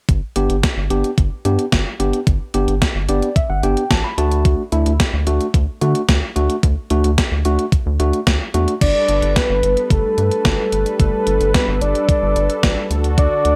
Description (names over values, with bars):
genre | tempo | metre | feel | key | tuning
synth-pop | 110 BPM | 4/4 | straight | G major | A4 = 440 Hz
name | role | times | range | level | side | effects
rubbery square bass | bass | 0.1-13.6 s | G1 to D3 | -21 LUFS | equal | none
gated 80s digital drum machine | drums | 0.1-13.6 s | crash cymbal, hi-hat, kick drum, snare drum | -20 LUFS | equal | gated reverb, gated reverb snare, overdrive
tine electric piano | accompaniment | 0.4-8.7 s | A3 to B5 | -22 LUFS | equal | none
soft octave-layered synth lead | melody | 8.8-13.6 s | A4 to D5 | -20 LUFS | equal | chorus, phaser, slapback echo
brassy analog pad | sustained chords | 8.8-13.6 s | D3 to B4 | -27 LUFS | equal | chorus
room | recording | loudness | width
light reverb, digital ambience | none | -17 LUFS | mono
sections
0.1-8.8 A section; 8.8-13.6 B section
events
tine electric piano fill 2.8-4.5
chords
0.1 G; 4.2 D; 8.8 Gadd9; 12.9 D